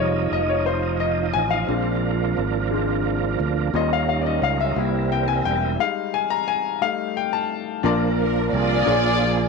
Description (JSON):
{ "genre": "gospel", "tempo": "58 BPM (dotted quarters)", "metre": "6/8", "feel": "straight", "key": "unclear", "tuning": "A4 = 440 Hz", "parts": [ { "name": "clear concert grand piano", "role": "accompaniment", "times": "0.0-9.5 s", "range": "Bb2 to Bb5", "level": "-23 LUFS", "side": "left 11 dB", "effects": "none" }, { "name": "mellow French horn section", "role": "sustained chords", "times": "0.0-5.8 s", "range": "C3 to Eb4", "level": "-32 LUFS", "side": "right 1 dB", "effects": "none" }, { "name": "overdriven tonewheel organ", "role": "sustained chords", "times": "0.0-9.5 s", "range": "F3 to Eb5", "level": "-25 LUFS", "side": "right 13 dB", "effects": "fast rotary speaker, chorus vibrato" }, { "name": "fingered electric bass", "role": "bass", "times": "0.0-9.5 s", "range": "E1 to Eb2", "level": "-25 LUFS", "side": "right 3 dB", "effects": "none" }, { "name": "dark studio string section", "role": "melody", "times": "8.2-9.5 s", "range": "F4 to D5", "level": "-21 LUFS", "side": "equal", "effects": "none" } ], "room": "moderate echo chamber reverb, RT60 1.4 s", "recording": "1960s-style stereo with parts hard left and right", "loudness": "-20 LUFS", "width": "side -4 dB against mid", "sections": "0.0-7.8 A section; 7.8-9.5 B section", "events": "grand piano solo 0.0-7.8; stop 5.8-7.8", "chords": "0.0 Fm7; 1.7 Bb7; 3.7 Eb7; 4.8 C7; 5.8 Fm11/G; 6.8 F9/G; 7.8 Bbmaj7; 8.9 Bb7" }